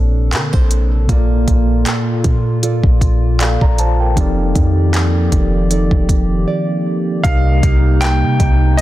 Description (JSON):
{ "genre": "contemporary R&B", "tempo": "78 BPM", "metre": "4/4", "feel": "swing 54% on 16ths", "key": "Bb major", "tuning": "A4 = 439 Hz", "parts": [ { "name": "mellow tine electric piano", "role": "accompaniment", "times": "0.0-8.8 s", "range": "Bb2 to Bb5", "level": "-20 LUFS", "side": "left 1 dB", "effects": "fast stereo tremolo" }, { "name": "hollow soft pad", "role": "sustained chords", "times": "0.0-8.8 s", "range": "Bb2 to D5", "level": "-24 LUFS", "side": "equal", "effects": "chorus" }, { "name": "nylon-string guitar", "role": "arpeggios", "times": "0.0-8.8 s", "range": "C3 to D5", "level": "-23 LUFS", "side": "right 7 dB", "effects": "none" }, { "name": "clean 808-style bass", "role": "bass", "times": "0.0-8.8 s", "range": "F1 to D3", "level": "-15 LUFS", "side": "equal", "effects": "none" }, { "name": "smooth R&B drum kit", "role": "drums", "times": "0.3-8.8 s", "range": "handclaps, hi-hat, kick drum", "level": "-16 LUFS", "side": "equal", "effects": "none" }, { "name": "warm baby grand piano", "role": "melody", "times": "7.2-8.8 s", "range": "Eb5 to G5", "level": "-20 LUFS", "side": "right 1 dB", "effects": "tape echo" } ], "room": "little or no reverb", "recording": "dense, heavily limited modern master", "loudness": "-12 LUFS", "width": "side -15 dB against mid", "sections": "0.0-7.2 A section; 7.2-8.8 B section", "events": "break 6.5-7.2", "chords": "0.0 Bbmaj9; 4.2 F13; 7.2 Cm7", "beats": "0.32 | 1.09 1.86 2.63 3.40 | 4.17 4.94 5.71 6.48 | 7.25 8.02 8.79" }